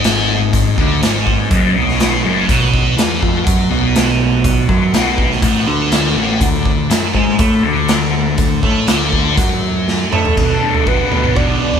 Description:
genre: psychedelic rock.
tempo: 122 BPM.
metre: 4/4.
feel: straight.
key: B dorian.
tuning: A4 = 441 Hz.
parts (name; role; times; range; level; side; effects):
bright tonewheel organ; sustained chords; 0.0-11.8 s; F#3 to D#5; -29 LUFS; right 5 dB; slow rotary speaker, overdrive, chorus vibrato.
thick fuzz guitar; riff; 0.0-11.8 s; F#2 to F#4; -15 LUFS; left 1 dB; distortion, phaser.
growling picked electric bass; bass; 0.0-11.8 s; F#1 to A2; -21 LUFS; right 1 dB; overdrive.
raw garage drum kit; drums; 0.0-11.8 s; crash cymbal, hi-hat, kick drum, snare drum, toms; -16 LUFS; equal; none.
fat analog lead; melody; 10.1-11.8 s; A4 to D5; -19 LUFS; right 2 dB; phaser.
room: light reverb.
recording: band playing live in one room.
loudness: -12 LUFS.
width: side -7 dB against mid.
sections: 0.0-10.4 A section; 10.4-11.8 B section.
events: drum fill 9.9-10.4.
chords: 0.0 G#5; 2.5 Bm; 6.4 D5; 10.4 Bm.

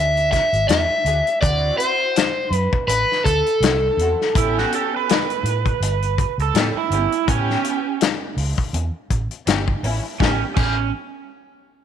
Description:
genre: straight-eighth soul blues.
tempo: 82 BPM.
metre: 4/4.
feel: swing 56% on 16ths.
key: A mixolydian.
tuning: A4 = 441 Hz.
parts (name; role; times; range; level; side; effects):
overdriven semi-hollow guitar; melody; 0.0-6.1 s; A4 to E5; -19 LUFS; left 1 dB; slapback echo.
vintage muted fingered electric bass; bass; 0.0-10.9 s; G1 to A2; -22 LUFS; right 1 dB; none.
warm soul drum kit; drums; 0.2-10.8 s; crash cymbal, hi-hat, kick drum, snare drum; -22 LUFS; left 4 dB; none.
dark symphonic string section; sustained chords; 0.7-10.5 s; B3 to G#4; -30 LUFS; left 1 dB; none.
overdriven slide guitar; second line; 4.4-10.9 s; C#4 to B4; -23 LUFS; right 13 dB; none.
room: light reverb, small room ambience.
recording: 1960s-style stereo.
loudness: -17 LUFS.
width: side -8 dB against mid.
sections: 0.0-10.2 A section; 10.2-11.8 B section.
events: none.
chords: 0.0 E9; 1.4 D9; 4.3 A9.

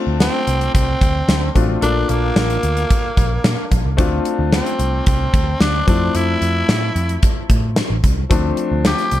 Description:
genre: 1980s-style pop.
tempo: 111 BPM.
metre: 4/4.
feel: straight.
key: D minor.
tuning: A4 = 444 Hz.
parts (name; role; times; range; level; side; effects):
bright baby grand piano; accompaniment; 0.0-9.2 s; F3 to A4; -23 LUFS; left 4 dB; none.
vintage muted picked electric bass; bass; 0.1-9.2 s; A1 to Bb2; -20 LUFS; equal; none.
raspy tenor saxophone; melody; 0.2-9.2 s; Bb3 to G4; -22 LUFS; equal; ping-pong delay.
gated 80s drum kit; drums; 0.2-9.2 s; hi-hat, kick drum, snare drum; -17 LUFS; equal; none.
room: light reverb, small room reverb.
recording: dark, warm production.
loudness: -15 LUFS.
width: side -13 dB against mid.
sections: 0.0-9.2 A section.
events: none.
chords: 0.0 Dm7; 1.8 Bbmaj7; 4.0 Dm7; 5.9 Fmaj7; 8.3 Dm7.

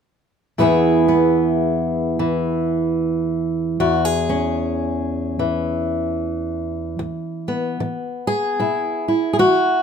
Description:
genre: folk, solo fingerstyle acoustic guitar.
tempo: 75 BPM.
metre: 4/4.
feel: swing 61% on 8ths.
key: E major.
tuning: A4 = 440 Hz.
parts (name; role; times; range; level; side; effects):
fingerpicked steel-string acoustic guitar; solo; 0.6-9.8 s; E2 to G#4; -18 LUFS; equal; none.
room: light reverb.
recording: minimal, uncompressed stereo recording.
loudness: -18 LUFS.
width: side -7 dB against mid.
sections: 0.6-7.0 A section; 7.0-9.8 B section.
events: none.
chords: 0.6 E; 3.8 C#m/E; 7.0 E.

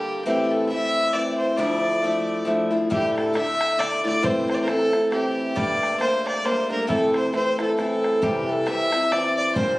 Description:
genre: celtic folk, Celtic waltz.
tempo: 136 BPM.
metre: 3/4.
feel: swing 57% on 8ths.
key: D minor.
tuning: A4 = 440 Hz.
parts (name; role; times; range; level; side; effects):
rich fiddle; melody; 0.0-9.8 s; G4 to E5; -23 LUFS; equal; plate reverb.
picked acoustic archtop guitar; accompaniment; 0.0-9.8 s; D2 to E4; -23 LUFS; left 1 dB; none.
bodhran; percussion; 2.9-9.7 s; none; -31 LUFS; equal; none.
room: wet studio reverb, RT60 0.8 s.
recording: recorded on a phone in the room, club reverb, compression.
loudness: -20 LUFS.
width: side -19 dB against mid.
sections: 0.0-2.9 A section; 2.9-9.8 A section.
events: none.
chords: 0.3 Am; 1.6 Dmadd9; 2.9 Dsus2; 4.2 Am; 5.6 Gmadd9; 6.9 Fmaj7; 8.2 C.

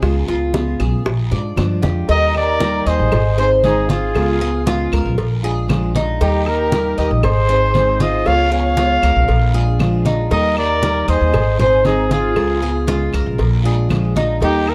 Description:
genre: latin, Cuban son and guajira.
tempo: 117 BPM.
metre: 4/4.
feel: straight.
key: Eb major.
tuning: A4 = 440 Hz.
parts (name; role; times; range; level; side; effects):
picked plugged-in steel-string acoustic guitar; accompaniment; 0.0-14.7 s; Db3 to Ab4; -25 LUFS; equal; none.
Cuban tres; arpeggios; 0.0-14.7 s; Eb4 to Eb5; -25 LUFS; equal; tape echo.
upright bass; bass; 0.0-14.7 s; Ab1 to Ab2; -21 LUFS; equal; none.
bongos and cowbell; percussion; 0.0-14.7 s; none; -28 LUFS; equal; none.
claves; percussion; 0.0-14.7 s; none; -36 LUFS; equal; none.
congas; percussion; 0.0-14.7 s; none; -24 LUFS; equal; none.
guiro; percussion; 0.0-14.7 s; none; -37 LUFS; equal; none.
mellow trumpet; melody; 2.1-14.7 s; G4 to F5; -21 LUFS; equal; none.
rich studio violin section; second line; 2.1-14.7 s; Eb4 to Db5; -30 LUFS; equal; none.
room: moderate studio ambience, RT60 0.5 s.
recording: dark, warm production.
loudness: -16 LUFS.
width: mono.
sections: 0.0-2.1 A section; 2.1-14.7 B section.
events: drum fill 1.6-2.1.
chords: 0.0 Db7; 1.1 Bb7; 2.1 Eb; 3.1 Ab; 4.1 Db7; 5.2 Bb7; 6.2 Eb; 7.2 Ab; 8.3 Db7; 9.3 Bb7; 10.3 Eb; 11.3 Ab; 12.4 Db7; 13.4 Bb7.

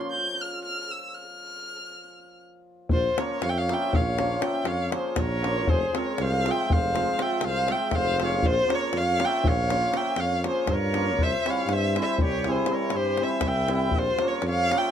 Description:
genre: balkan folk, Balkan wedding band.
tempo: 240 BPM (eighths).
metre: 11/8.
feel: straight.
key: Bb dorian sharp4.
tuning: A4 = 444 Hz.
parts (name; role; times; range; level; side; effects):
hammered dulcimer; accompaniment; 0.0-14.9 s; E3 to F4; -31 LUFS; equal; none.
davul; percussion; 0.0-14.8 s; none; -28 LUFS; left 2 dB; none.
dark violin; melody; 0.1-14.9 s; C5 to G6; -27 LUFS; equal; none.
mellow trumpet; second line; 2.9-14.9 s; F4 to E5; -32 LUFS; left 2 dB; none.
warm tuba; bass; 2.9-14.7 s; F1 to G2; -29 LUFS; right 1 dB; none.
room: moderate small room reverb, RT60 0.5 s.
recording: none.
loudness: -23 LUFS.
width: side -9 dB against mid.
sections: 0.0-2.9 A section; 2.9-14.9 B section.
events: stop 0.1-2.9.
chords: 0.0 N.C.; 2.9 Bbm; 5.7 Fm; 8.4 Bbm; 11.2 C; 13.9 Bbm.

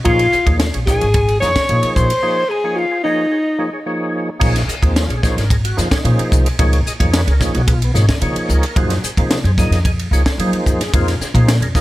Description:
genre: electric jazz fusion.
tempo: 110 BPM.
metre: 4/4.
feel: straight.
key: Bb minor.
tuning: A4 = 440 Hz.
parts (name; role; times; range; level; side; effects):
mellow alto saxophone; melody; 0.0-3.8 s; Eb4 to Db5; -18 LUFS; left 1 dB; analog delay.
percussive tonewheel organ; accompaniment; 0.0-11.8 s; F3 to Eb5; -22 LUFS; right 1 dB; slow rotary speaker, overdrive, chorus vibrato.
breathy bright jazz flute; second line; 0.1-3.8 s; Eb5 to Db6; -21 LUFS; left 2 dB; none.
upright bass; bass; 0.1-11.8 s; Ab1 to Gb3; -16 LUFS; equal; none.
crisp fusion drum kit; drums; 0.1-11.8 s; crash cymbal, hi-hat, kick drum, ride cymbal, snare drum; -18 LUFS; equal; none.
room: light reverb, small room ambience.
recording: none.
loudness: -13 LUFS.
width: side -16 dB against mid.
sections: 0.0-4.4 A section; 4.4-11.8 B section.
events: break 2.2-4.4.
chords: 0.1 Bbm11; 6.6 Db13; 8.8 Gbmaj9#11; 10.9 Fm7.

